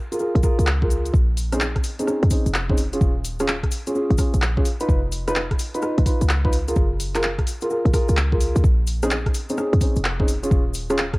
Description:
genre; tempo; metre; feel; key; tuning
UK garage, two-step garage; 128 BPM; 4/4; swing 66% on 16ths; Bb minor; A4 = 439 Hz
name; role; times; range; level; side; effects
dark concert grand piano; stabs; 0.1-11.0 s; C4 to Cb5; -25 LUFS; equal; cassette tape, tape echo
punchy analog drum machine; drums; 0.1-11.2 s; handclaps, hi-hat, rim click; -27 LUFS; equal; overdrive, cassette tape
cabasa; percussion; 0.1-11.1 s; none; -37 LUFS; left 11 dB; none
short 808-style bass; bass; 0.4-11.2 s; Eb1 to Eb2; -21 LUFS; equal; tube saturation, sidechain pumping
electronic kick drum; drums; 0.4-11.2 s; none; -21 LUFS; equal; cassette tape
room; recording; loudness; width
little or no reverb; home recording on cassette; -18 LUFS; side -23 dB against mid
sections
0.0-11.2 A section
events
none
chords
0.0 Gbmaj7 (rootless); 1.1 Bbm11; 3.0 Eb9sus4; 4.7 Db7/F; 6.8 Gbmaj7; 8.6 Bbm11; 10.5 Eb9sus4

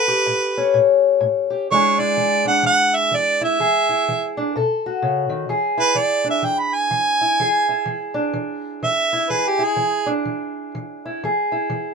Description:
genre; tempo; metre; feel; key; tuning
acoustic country blues, solo or duo; 126 BPM; 4/4; swing 60% on 8ths; E mixolydian; A4 = 440 Hz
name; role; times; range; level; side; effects
clear harmonica; melody; 0.0-10.1 s; G4 to B5; -18 LUFS; right 3 dB; none
fingerpicked steel-string acoustic guitar; accompaniment; 0.0-11.9 s; A2 to A4; -20 LUFS; left 3 dB; none
room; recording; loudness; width
moderate booth ambience, RT60 0.2 s; minimal, uncompressed stereo recording; -17 LUFS; side -5 dB against mid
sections
0.0-5.5 A section; 5.5-11.9 B section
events
harmonica solo 5.5-11.9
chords
0.0 A7; 1.7 E7; 4.5 B7; 5.5 E7

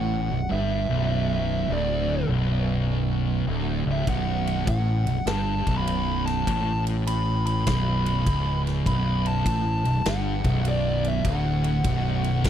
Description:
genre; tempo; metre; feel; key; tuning
stoner and doom metal; 100 BPM; 4/4; swing 66% on 8ths; B minor; A4 = 442 Hz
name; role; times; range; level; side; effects
fuzz lead guitar; melody; 0.0-12.5 s; D5 to B5; -30 LUFS; left 1 dB; distortion, tape echo
thick fuzz guitar; riff; 0.0-12.5 s; B1 to A2; -29 LUFS; left 8 dB; distortion
thick fuzz guitar; riff; 0.0-12.5 s; B1 to A2; -27 LUFS; right 6 dB; distortion
growling fingered electric bass; bass; 0.0-12.5 s; B0 to A1; -28 LUFS; equal; overdrive
big rock drum kit; drums; 4.1-12.5 s; kick drum, ride cymbal, snare drum; -30 LUFS; left 1 dB; none
room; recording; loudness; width
small room ambience; dry, close 1970s-style studio recording; -22 LUFS; side -10 dB against mid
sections
0.0-12.5 A section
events
none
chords
0.0 Bm

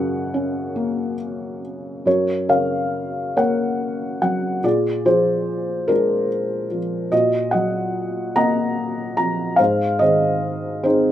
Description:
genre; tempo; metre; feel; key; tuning
classical, lyrical solo piano; 48 BPM (dotted quarters); 6/8; rubato; Gb lydian; A4 = 440 Hz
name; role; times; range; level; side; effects
felt-muted upright piano; solo; 0.0-11.1 s; Gb2 to Bb5; -18 LUFS; equal; none
room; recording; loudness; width
moderate small room reverb, RT60 0.5 s; minimal, uncompressed stereo recording; -18 LUFS; side -11 dB against mid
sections
0.0-2.1 A section; 2.1-11.1 B section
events
none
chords
0.0 Gb; 4.6 Bb7; 7.1 Ebmadd9/Bb; 9.6 Ab

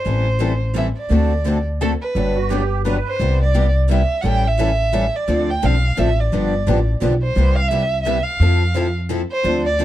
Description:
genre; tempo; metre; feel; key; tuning
acoustic string swing (jazz manouche); 173 BPM; 3/4; swing 60% on 8ths; G major, C major from 3.2 s; A4 = 441 Hz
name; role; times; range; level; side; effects
warm violin; melody; 0.0-9.8 s; A4 to G5; -22 LUFS; right 2 dB; none
picked steel-string acoustic guitar; accompaniment; 0.0-9.8 s; C3 to A4; -26 LUFS; right 5 dB; none
picked steel-string acoustic guitar; accompaniment; 0.1-9.8 s; C3 to A4; -24 LUFS; left 6 dB; none
upright bass; bass; 0.1-9.8 s; G1 to F2; -18 LUFS; equal; none
musette accordion; second line; 2.4-3.2 s; F#4 to B4; -25 LUFS; right 10 dB; none
room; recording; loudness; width
little or no reverb; dark, warm production; -16 LUFS; side -13 dB against mid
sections
0.0-3.2 A section; 3.2-9.8 B section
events
none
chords
0.1 Am7; 1.1 D7; 2.2 Gmaj7; 3.2 Cmaj7; 4.2 A7; 5.3 Dm7; 6.3 G9; 7.4 Cmaj7; 8.4 Fmaj7

